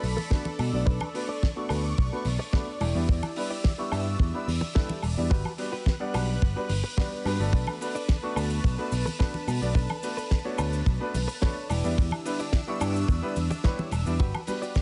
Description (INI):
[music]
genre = nu-disco, nu disco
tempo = 108 BPM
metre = 4/4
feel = straight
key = B minor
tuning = A4 = 440 Hz
[part]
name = lush unison pad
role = sustained chords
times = 0.0-14.8 s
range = D4 to F#6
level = -41 LUFS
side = equal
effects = chorus, phaser, sidechain pumping
[part]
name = picked electric bass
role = bass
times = 0.0-14.3 s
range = E1 to B2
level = -30 LUFS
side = equal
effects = none
[part]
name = damped 70s drum kit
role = drums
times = 0.0-14.8 s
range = hi-hat, snare drum, woodblock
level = -38 LUFS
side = equal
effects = studio reverb
[part]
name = direct-recorded clean electric guitar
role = riff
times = 0.2-14.8 s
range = D4 to E5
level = -39 LUFS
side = equal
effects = subtle chorus, low-pass filter, digital delay
[part]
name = congas and cabasa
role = percussion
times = 0.2-14.8 s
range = none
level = -39 LUFS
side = equal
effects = none
[part]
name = bright grand piano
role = accompaniment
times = 0.3-14.6 s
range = G3 to C#6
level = -36 LUFS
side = equal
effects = sidechain pumping, low-pass filter, digital delay
[part]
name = kick drum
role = drums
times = 0.3-14.8 s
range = none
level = -26 LUFS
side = equal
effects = studio reverb
[sound]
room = studio ambience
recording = nothing above 10.9 kHz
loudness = -27 LUFS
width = mono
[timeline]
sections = 0.0-14.8 A section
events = filter sweep on clean electric guitar 0.0-14.8; filter sweep on grand piano 0.0-14.8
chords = 0.0 Bm7; 2.8 Em7; 5.3 Gmaj7; 7.5 Bm7; 11.7 Em7; 14.2 Gmaj7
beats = 0.31 | 0.87 1.42 1.98 2.53 | 3.09 3.64 4.20 4.75 | 5.31 5.87 6.42 6.98 | 7.53 8.09 8.64 9.20 | 9.76 10.31 10.87 11.42 | 11.98 12.53 13.09 13.64 | 14.20 14.76